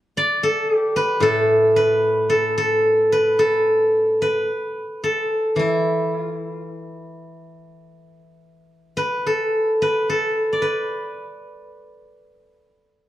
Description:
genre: chinese traditional, Chinese solo plucked strings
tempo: 53-58 BPM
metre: 4/4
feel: rubato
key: unclear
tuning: A4 = 440 Hz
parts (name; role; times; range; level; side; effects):
- steel-string zither; solo; 0.2-12.7 s; A2 to D5; -18 LUFS; equal; none
room: light reverb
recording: dark, warm production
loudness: -17 LUFS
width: side -13 dB against mid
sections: 0.0-13.1 A section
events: none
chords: none

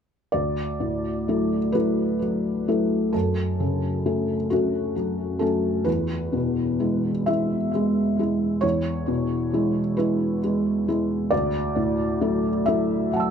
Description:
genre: neoclassical minimalist piano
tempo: 44 BPM (dotted quarters)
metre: 6/8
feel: rubato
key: unclear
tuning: A4 = 440 Hz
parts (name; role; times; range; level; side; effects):
- felt-muted upright piano; solo; 0.3-13.3 s; D2 to E6; -21 LUFS; equal; tape echo
room: moderate studio reverb, RT60 0.6 s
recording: none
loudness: -21 LUFS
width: side -7 dB against mid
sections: 0.3-13.3 A section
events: none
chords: 0.3 Dadd9; 3.1 F#m; 5.9 E; 11.3 Dadd9

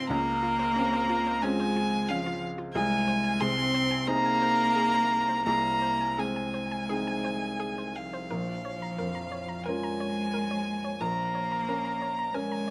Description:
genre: neoclassical piano and strings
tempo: 84-92 BPM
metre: 4/4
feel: rubato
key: unclear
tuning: A4 = 441 Hz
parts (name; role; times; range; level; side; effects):
- clear violin; melody; 0.0-12.7 s; F5 to C6; -32 LUFS; equal; none
- rich cello; second line; 0.0-12.7 s; F3 to C4; -34 LUFS; equal; none
- felt-muted upright piano; accompaniment; 0.0-12.7 s; Bb1 to Bb4; -36 LUFS; equal; none
- hollow square pluck; arpeggios; 0.0-12.7 s; Db4 to Bb5; -41 LUFS; equal; chorus, tape echo
room: moderate echo chamber reverb, RT60 1.6 s, small room ambience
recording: lossy compression artefacts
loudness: -29 LUFS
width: mono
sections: 0.0-12.7 A section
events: none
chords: 0.0 Dbmaj7; 2.7 Ab/C; 8.3 Bbm

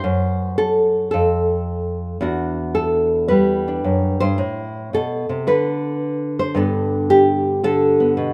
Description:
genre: solo jazz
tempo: 110 BPM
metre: 4/4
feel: swing 68% on 8ths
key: unclear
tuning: A4 = 440 Hz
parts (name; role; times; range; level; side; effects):
- nylon-string guitar; solo; 0.0-8.3 s; E2 to C5; -19 LUFS; equal; none
room: moderate plate reverb, RT60 2.8 s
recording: rough home demo mix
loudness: -19 LUFS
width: mono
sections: 0.0-8.3 A section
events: none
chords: 0.0 N.C.; 2.2 Em9; 4.4 Amadd9; 5.5 N.C.; 6.5 Gadd9

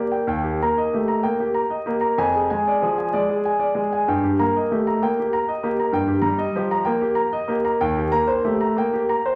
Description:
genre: classical, baroque-style suite movement for grand piano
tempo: 63 BPM (dotted quarters)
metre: 12/8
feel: rubato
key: unclear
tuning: A4 = 440 Hz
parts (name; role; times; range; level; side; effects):
- clear concert grand piano; solo; 0.0-9.4 s; Eb2 to Bb5; -21 LUFS; equal; none
room: wet recital hall reverb, RT60 1.3 s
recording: vinyl crackle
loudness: -21 LUFS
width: mono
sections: 0.0-9.4 A section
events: none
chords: 0.3 Eb; 2.2 Ddim/F; 4.1 Eb/G; 7.8 Cm7/Eb

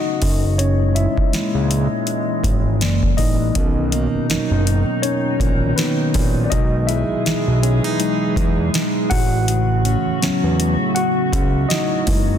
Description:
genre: contemporary R&B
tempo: 81 BPM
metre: 4/4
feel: swing 58% on 16ths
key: unclear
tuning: A4 = 440 Hz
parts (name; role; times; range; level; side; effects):
- mellow tine electric piano; accompaniment; 0.0-12.4 s; D#3 to F#5; -22 LUFS; left 4 dB; medium stereo tremolo
- glassy FM pad; sustained chords; 0.0-12.4 s; A#2 to G#4; -24 LUFS; equal; ensemble chorus, built-in reverb
- fat analog bass; bass; 0.2-12.4 s; F#1 to E2; -19 LUFS; equal; none
- booming analog drum machine; drums; 0.2-12.3 s; hi-hat, kick drum, snare drum; -21 LUFS; equal; none
- fingerpicked plugged-in steel-string acoustic guitar; arpeggios; 3.6-12.4 s; A2 to E4; -24 LUFS; right 6 dB; tape echo
room: digital ambience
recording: dense, heavily limited modern master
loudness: -16 LUFS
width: side -9 dB against mid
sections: 0.0-12.4 A section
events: tine electric piano solo 0.0-12.4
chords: 0.2 F#9; 2.8 F#7alt; 3.6 Bmaj7; 6.5 Emaj7/B; 9.1 A6

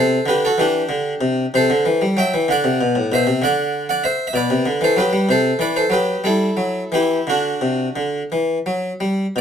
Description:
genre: classical, baroque-style suite movement for harpsichord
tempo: 57-66 BPM (dotted quarters)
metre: 6/8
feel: rubato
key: unclear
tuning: A4 = 437 Hz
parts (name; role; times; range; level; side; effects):
- harpsichord; solo; 0.0-9.4 s; A2 to G5; -16 LUFS; equal; none
room: moderate studio reverb, RT60 0.7 s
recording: none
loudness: -16 LUFS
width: side -8 dB against mid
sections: 0.0-9.3 A section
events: none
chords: 0.0 G5; 1.5 Am7/C; 2.5 D; 3.4 D7; 4.3 G/B; 5.3 Am7/C; 7.3 D

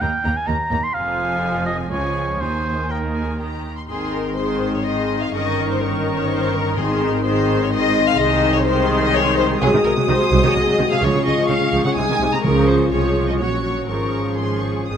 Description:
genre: quick classical-period movement for symphony orchestra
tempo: 126 BPM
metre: 3/4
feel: straight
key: Ab major, Db major from 9.6 s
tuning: A4 = 440 Hz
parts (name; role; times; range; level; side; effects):
- muted studio violin section; melody; 0.0-15.0 s; G5 to Eb6; -28 LUFS; left 2 dB; none
- muted chamber violin section; second line; 0.0-15.0 s; Eb4 to Bb5; -23 LUFS; left 4 dB; none
- warm oboe; second line; 0.0-3.4 s; Bb4 to C6; -23 LUFS; right 1 dB; none
- muted studio viola section; accompaniment; 0.0-15.0 s; C3 to Bb4; -23 LUFS; right 1 dB; none
- muted chamber cello section; bass; 0.0-15.0 s; Db2 to Db3; -26 LUFS; right 3 dB; none
- muted chamber double bass section; bass; 0.0-15.0 s; F1 to Eb2; -26 LUFS; right 3 dB; none
- dark French horn section; sustained chords; 3.9-15.0 s; Eb3 to Gb4; -22 LUFS; left 4 dB; none
- timpani; percussion; 6.8-7.4, 11.0-15.0 s; Ab2 to Db3; -27 LUFS; right 2 dB; none
room: moderate concert hall reverb, RT60 2.0 s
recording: none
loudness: -16 LUFS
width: side -8 dB against mid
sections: 0.0-3.9 A section; 3.9-15.0 A section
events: none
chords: 0.0 Eb5; 1.0 Fm; 1.9 Db; 2.4 Ebsus4; 3.9 Ab; 5.3 Eb7/G; 6.8 Ab; 8.2 Ab/C; 9.6 Ab7/C; 11.0 Db; 12.0 Ab/C; 12.4 Db; 13.4 Gb/Bb; 13.9 Db/Ab

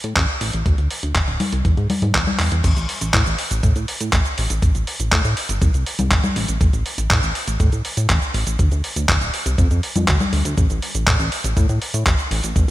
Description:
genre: italo disco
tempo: 121 BPM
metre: 4/4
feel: straight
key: unclear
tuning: A4 = 441 Hz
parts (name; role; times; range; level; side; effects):
- chorused synth bass; bass; 0.0-12.7 s; D1 to A2; -21 LUFS; equal; none
- dusty soul sampler-style drum kit; drums; 0.0-12.7 s; cabasa, congas, crash cymbal, handclaps, hi-hat; -21 LUFS; equal; none
- electronic kick drum; drums; 0.2-12.7 s; none; -18 LUFS; equal; none
room: light reverb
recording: bright 1980s-style digital production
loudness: -17 LUFS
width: side -15 dB against mid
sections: 0.0-2.6 A section; 2.6-12.7 B section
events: drum fill 2.4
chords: none

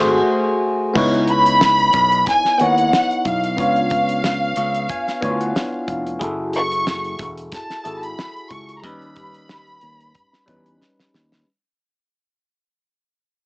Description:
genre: lush 1970s-style soul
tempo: 91 BPM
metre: 4/4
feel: swing 54% on 16ths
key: unclear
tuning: A4 = 440 Hz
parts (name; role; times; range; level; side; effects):
- warm studio violin section; melody; 0.0-10.8 s; E#5 to C#6; -17 LUFS; equal; cassette tape
- bell-like tine electric piano; accompaniment; 0.0-11.5 s; G3 to C#6; -21 LUFS; left 1 dB; phaser, cassette tape
- modern bright fingered electric bass; bass; 0.0-11.4 s; E1 to E2; -25 LUFS; equal; none
- damped 70s drum kit; drums; 1.0-11.5 s; crash cymbal, hi-hat, kick drum, snare drum; -24 LUFS; equal; none
room: light reverb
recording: home recording on cassette, small speaker sound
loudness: -15 LUFS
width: side -30 dB against mid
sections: 1.0-11.5 A section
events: band accent 0.0-1.0; fade-out 1.0-11.5; tine electric piano fill 4.2-6.2; drum fill 10.8-11.5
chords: 0.0 G#7b9; 1.0 C#m9; 3.6 C#7b9; 6.2 F#m9; 8.8 D#aug7

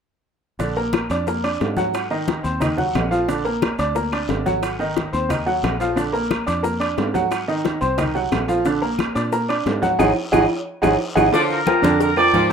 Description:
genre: latin, salsa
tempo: 179 BPM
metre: 4/4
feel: straight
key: Bb major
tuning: A4 = 440 Hz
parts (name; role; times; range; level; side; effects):
- bright upright piano; accompaniment; 0.6-12.5 s; D3 to D6; -20 LUFS; right 2 dB; none
- fingered electric bass; bass; 0.6-12.5 s; Ab1 to Bb2; -27 LUFS; left 1 dB; none
- bongos and cowbell; percussion; 0.6-12.5 s; none; -26 LUFS; left 10 dB; none
- congas; percussion; 0.6-12.5 s; none; -28 LUFS; left 3 dB; none
- guiro; percussion; 0.6-12.5 s; none; -39 LUFS; left 4 dB; none
- maracas; percussion; 0.6-12.5 s; none; -47 LUFS; right 3 dB; none
- timbales and agogo bells; percussion; 0.6-12.5 s; none; -27 LUFS; right 4 dB; none
- claves; percussion; 0.9-12.3 s; none; -35 LUFS; right 1 dB; none
- bright trumpet section; melody; 11.3-12.5 s; Bb4 to D6; -18 LUFS; equal; none
- edgy saxophone section; second line; 11.3-12.5 s; D3 to F3; -23 LUFS; left 1 dB; none
room: wet studio ambience, RT60 0.5 s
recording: rough home demo mix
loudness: -18 LUFS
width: side -7 dB against mid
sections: 0.6-11.3 A section; 11.3-12.5 B section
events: band accent 10.0-11.3; drum fill 10.7-11.3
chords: 0.6 Bb; 1.9 Ab7; 3.3 Bb; 4.6 Ab7; 6.0 Bb; 7.3 Ab7; 8.7 Bb; 10.0 Ab5; 11.3 Bb

